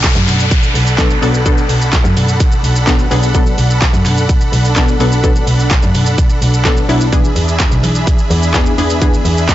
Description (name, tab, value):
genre	dance-pop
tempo	127 BPM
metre	4/4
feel	straight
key	B dorian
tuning	A4 = 440 Hz
part	punchy chord stab	accompaniment	0.0-9.5 s	E3 to A4	-18 LUFS	left 3 dB	chorus
part	supersaw chords	sustained chords	0.0-9.5 s	D4 to B5	-20 LUFS	right 1 dB	sidechain pumping
part	warm double bass	bass	0.0-9.5 s	B1 to E3	-14 LUFS	equal	sidechain pumping
part	pop drum kit	drums	0.0-9.5 s	handclaps, hi-hat, kick drum, shaker, snare drum	-14 LUFS	equal	none
part	group handclap	percussion	0.0-9.5 s	none	-27 LUFS	right 4 dB	none
part	downlifter	sound effects	0.0-3.3 s	none	-21 LUFS	left 1 dB	none
room	little or no reverb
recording	blown-out, overdriven recording, overdrive, nothing above 7.9 kHz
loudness	-10 LUFS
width	side -13 dB against mid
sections	0.0-9.5 A section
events	none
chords	0.0 Bm7; 7.1 E7